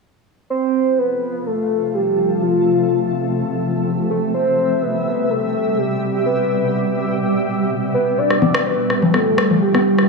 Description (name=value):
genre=progressive house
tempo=125 BPM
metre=4/4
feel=straight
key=unclear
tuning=A4 = 440 Hz
part: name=soft octave-layered synth lead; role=melody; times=0.5-10.1 s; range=F4 to D5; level=-18 LUFS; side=equal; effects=chorus, phaser, dub echo
part: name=shimmering ambient pad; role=sustained chords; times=1.2-10.1 s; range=B2 to E5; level=-20 LUFS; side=equal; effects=chorus, built-in reverb
part: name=electronic rim click and congas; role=percussion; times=8.3-10.1 s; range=none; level=-17 LUFS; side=left 3 dB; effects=none
room=moderate lush hall reverb, RT60 2.0 s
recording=studio ambience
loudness=-16 LUFS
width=side -3 dB against mid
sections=0.5-10.1 A section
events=filter sweep on ambient pad 0.5-10.1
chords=0.5 F; 4.3 Cmaj7; 8.2 G7